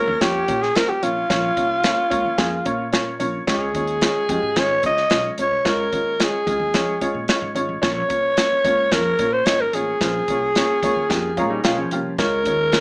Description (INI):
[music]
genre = uptempo 1960s-style soul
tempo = 110 BPM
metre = 4/4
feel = straight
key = unclear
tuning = A4 = 438 Hz
[part]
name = growling alto saxophone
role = melody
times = 0.0-12.8 s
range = F4 to Eb5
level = -23 LUFS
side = equal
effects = none
[part]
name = warm upright piano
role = accompaniment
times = 0.0-12.8 s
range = Ab3 to Bb5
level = -27 LUFS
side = equal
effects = none
[part]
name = upright bass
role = bass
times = 0.0-12.8 s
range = Ab1 to Db3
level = -34 LUFS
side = equal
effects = none
[part]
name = natural country drum kit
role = drums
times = 0.2-12.8 s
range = hi-hat, kick drum, snare drum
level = -25 LUFS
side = equal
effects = none
[part]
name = hollow-body jazz guitar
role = riff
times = 11.4-12.2 s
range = F3 to F4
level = -27 LUFS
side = equal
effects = none
[sound]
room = moderate studio reverb, RT60 0.6 s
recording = small speaker sound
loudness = -20 LUFS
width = mono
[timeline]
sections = 0.0-12.8 A section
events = upright piano fill 11.1-12.2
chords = 0.0 Bbm; 3.5 Db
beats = 0.21 0.76 | 1.30 1.84 2.39 2.93 | 3.48 4.02 4.57 5.11 | 5.65 6.20 6.74 7.28 | 7.83 8.37 8.92 9.46 | 10.00 10.55 11.09 11.64 | 12.18 12.73